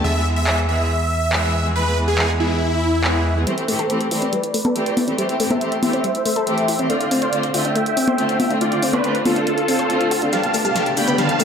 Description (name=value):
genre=uplifting trance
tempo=140 BPM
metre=4/4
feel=straight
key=A minor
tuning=A4 = 439 Hz
part: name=big supersaw lead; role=melody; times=0.0-11.4 s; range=D4 to B5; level=-21 LUFS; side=right 1 dB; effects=phaser, low-pass filter, tape echo
part: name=clear symphonic string section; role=sustained chords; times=0.0-11.1 s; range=D3 to G#4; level=-23 LUFS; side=equal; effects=none
part: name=fat analog bass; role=bass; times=0.0-3.4 s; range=E2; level=-21 LUFS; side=equal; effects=none
part: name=punchy analog drum machine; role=drums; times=0.5-11.4 s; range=congas, handclaps, hi-hat, shaker, snare drum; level=-24 LUFS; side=equal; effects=low-pass filter on snare, low-pass filter on hats, low-pass filter on perc
part: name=analog pluck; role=arpeggios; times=3.5-11.4 s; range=G3 to C5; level=-23 LUFS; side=left 2 dB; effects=chorus, diffuse ambient delay
part: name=riser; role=sound effects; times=10.7-11.4 s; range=none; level=-26 LUFS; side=left 1 dB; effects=none
room=wet plate reverb, RT60 1.9 s, digital ambience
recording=dreamy mix soaked in reverb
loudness=-17 LUFS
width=side -7 dB against mid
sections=0.0-3.5 A section; 3.5-11.4 B section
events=build-up 3.5-11.4; filter sweep on supersaw synth 3.5-11.4; filter sweep on synth pluck 3.5-11.4; drum fill 10.3-11.4; riser 10.7-11.4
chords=0.0 E; 3.5 Am7; 6.9 Dm7; 10.3 Gadd9/D